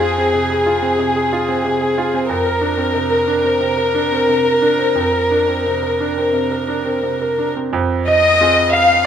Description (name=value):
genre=neoclassical piano and strings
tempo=86-92 BPM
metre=4/4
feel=rubato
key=F dorian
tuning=A4 = 440 Hz
part: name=warm chamber violin section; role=melody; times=0.0-9.1 s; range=Ab4 to F5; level=-15 LUFS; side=left 2 dB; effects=none
part: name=bright concert grand piano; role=accompaniment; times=0.0-9.1 s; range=F2 to F5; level=-19 LUFS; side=right 4 dB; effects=none
room=light reverb, small room ambience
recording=rough home demo mix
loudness=-14 LUFS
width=side -8 dB against mid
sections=0.0-7.7 A section; 7.7-9.1 B section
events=none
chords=0.0 Fm; 2.3 Bbadd9/F; 7.7 Fm